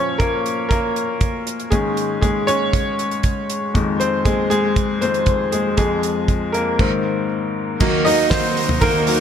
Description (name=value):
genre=piano-driven pop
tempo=118 BPM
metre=4/4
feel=straight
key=unclear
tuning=A4 = 438 Hz
part: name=bright upright piano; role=accompaniment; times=0.0-9.2 s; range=F2 to Eb5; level=-18 LUFS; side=left 2 dB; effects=slapback echo
part: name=damped 70s drum kit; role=drums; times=0.2-9.2 s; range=crash cymbal, handclaps, hi-hat, kick drum, snare drum, toms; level=-20 LUFS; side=right 1 dB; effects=none
part: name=warm studio string section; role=sustained chords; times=7.8-9.2 s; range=Eb2 to Bb4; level=-26 LUFS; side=right 2 dB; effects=none
part: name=picked steel-string acoustic guitar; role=riff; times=7.8-9.2 s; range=Eb3 to Gb4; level=-21 LUFS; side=right 8 dB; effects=none
room=moderate lush hall reverb, RT60 1.7 s, small room ambience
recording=big arena sound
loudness=-16 LUFS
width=side -8 dB against mid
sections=0.0-7.8 A section; 7.8-9.2 B section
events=upright piano solo 0.0-7.8, 7.8-9.2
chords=0.0 Bbm; 1.7 Absus4; 3.8 Fm7; 5.8 Fmadd11; 6.8 Abadd9; 7.8 Ebm